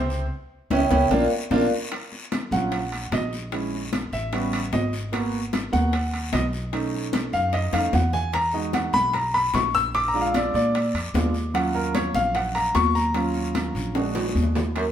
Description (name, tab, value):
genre	Afro-Cuban jazz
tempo	150 BPM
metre	4/4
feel	straight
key	Eb minor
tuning	A4 = 440 Hz
part	warm grand piano	accompaniment	0.0-14.5 s	B#2 to E6	-24 LUFS	equal	none
part	upright bass	bass	0.0-14.9 s	Ab1 to Bb2	-27 LUFS	equal	none
part	congas	percussion	0.1-14.9 s	none	-29 LUFS	left 2 dB	none
part	guiro	percussion	0.1-14.9 s	none	-39 LUFS	left 4 dB	none
part	vibraphone with soft mallets	melody	0.7-1.7, 14.8-14.9 s	A#4 to G5	-23 LUFS	right 1 dB	none
part	bongos	percussion	0.7-14.9 s	none	-34 LUFS	left 6 dB	none
part	timbales	percussion	0.7-14.9 s	none	-32 LUFS	right 3 dB	none
part	brilliant trombone	second line	14.8-14.9 s	Gb2	-27 LUFS	right 1 dB	none
room	moderate stone room reverb, RT60 1.2 s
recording	band playing live in one room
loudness	-21 LUFS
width	side -10 dB against mid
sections	0.0-1.9 A section; 1.9-14.8 A section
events	vibraphone solo 0.0-1.9; band accent 0.3-1.9; drum fill 1.1-1.9, 7.7-8.3, 14.0-14.8; grand piano solo 1.9-14.8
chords	0.3 C#m7b5; 1.1 A#; 1.9 Ebm9/Bb (rootless); 3.5 Bbm7b5; 4.3 A13; 5.1 Abm9; 6.7 B7; 8.3 Emaj7; 9.9 Bb7; 11.5 Ebm7; 14.0 Bb7b13